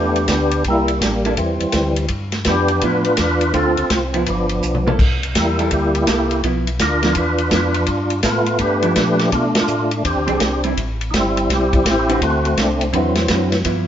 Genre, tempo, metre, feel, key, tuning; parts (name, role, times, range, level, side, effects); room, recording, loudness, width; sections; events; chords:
soul jazz organ trio; 166 BPM; 4/4; swing 65% on 8ths; G mixolydian; A4 = 441 Hz
percussive tonewheel organ; melody; 0.0-13.6 s; E3 to B4; -18 LUFS; equal; slow rotary speaker, overdrive, chorus vibrato
mellow tonewheel organ; bass; 0.0-13.9 s; G1 to B2; -23 LUFS; equal; slow rotary speaker
warm soul drum kit; drums; 0.2-13.8 s; crash cymbal, hi-hat, kick drum, ride cymbal, snare drum, toms; -21 LUFS; equal
vintage hollow-body jazz guitar; accompaniment; 1.3-13.9 s; D3 to B4; -23 LUFS; right 2 dB
moderate stone room reverb, RT60 1.1 s; band playing live in one room, nothing above 7.6 kHz; -15 LUFS; side -10 dB against mid
0.0-13.9 A section
drum fill 4.6-5.0; band accent 9.5
0.0 G69; 0.6 C13; 2.1 G13; 3.5 Dm7; 4.3 G13; 5.0 C13; 6.4 G13; 9.3 Bm7b5; 10.0 E7alt; 10.8 Am7; 12.2 D13